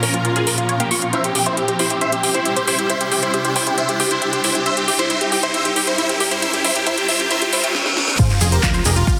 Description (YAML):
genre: uplifting trance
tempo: 136 BPM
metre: 4/4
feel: straight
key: unclear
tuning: A4 = 442 Hz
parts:
  - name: big supersaw lead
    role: melody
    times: 0.0-9.2 s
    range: Bb3 to E5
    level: -22 LUFS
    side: equal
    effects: phaser, sidechain pumping, low-pass filter, delay
  - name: shimmering ambient pad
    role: sustained chords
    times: 0.0-9.2 s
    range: G2 to C5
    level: -28 LUFS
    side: equal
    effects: chorus, built-in reverb, sidechain pumping
  - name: tight sequenced synth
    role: arpeggios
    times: 0.0-9.1 s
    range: E4 to Db6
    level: -28 LUFS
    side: equal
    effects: chorus, phaser, sidechain pumping, tape echo
  - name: house drum kit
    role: drums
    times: 0.0-9.2 s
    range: crash cymbal, handclaps, hi-hat, snare drum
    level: -23 LUFS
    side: equal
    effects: none
  - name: riser, reverse cymbal and sub drop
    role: sound effects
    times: 0.0-9.2 s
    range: none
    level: -27 LUFS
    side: equal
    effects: none
  - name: electronic kick drum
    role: drums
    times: 8.2-9.2 s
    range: none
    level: -20 LUFS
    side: equal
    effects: none
  - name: tube shaker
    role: percussion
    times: 8.2-9.2 s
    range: none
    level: -27 LUFS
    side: equal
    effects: none
  - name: plucky analog bass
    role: bass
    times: 8.4-9.0 s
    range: F1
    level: -21 LUFS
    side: equal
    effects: sidechain pumping
room: wet lush hall reverb, RT60 1.7 s, digital ambience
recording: dense, heavily limited modern master, high-pass filter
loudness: -18 LUFS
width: mono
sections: 0.0-8.2 A section; 8.2-9.2 B section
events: build-up 0.0-8.2; riser 0.0-7.7; filter sweep on supersaw synth 0.0-8.2; filter sweep 0.0-8.2; reverse cymbal 7.3-8.2; drum fill 7.7-8.2; drop 8.2-9.2; impact 8.2-9.2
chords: 0.0 Bbm; 1.1 C; 4.7 Gdim; 8.2 Fm